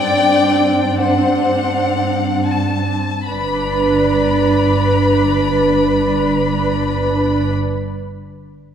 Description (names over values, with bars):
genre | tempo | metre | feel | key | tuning
classical, slow romantic movement for string orchestra | 24-31 BPM (dotted quarters) | 6/8 | rubato | G major | A4 = 440 Hz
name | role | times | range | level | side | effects
rich chamber violin section | melody | 0.0-7.5 s | F#5 to B5 | -20 LUFS | left 4 dB | none
warm chamber violin section | second line | 0.0-7.5 s | B4 to D5 | -20 LUFS | left 1 dB | none
rich studio viola section | accompaniment | 0.0-7.5 s | C4 to B4 | -18 LUFS | right 2 dB | none
warm studio cello section | bass | 0.0-7.5 s | G2 | -23 LUFS | right 2 dB | none
rich chamber double bass section | bass | 3.3-7.5 s | G1 | -22 LUFS | right 4 dB | none
room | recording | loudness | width
wet concert hall reverb, RT60 1.9 s | heard from further back in the room | -14 LUFS | side -8 dB against mid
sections
0.0-3.3 A section; 3.3-7.8 B section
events
slowing down 0.0-3.3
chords
0.0 D7/G; 3.3 G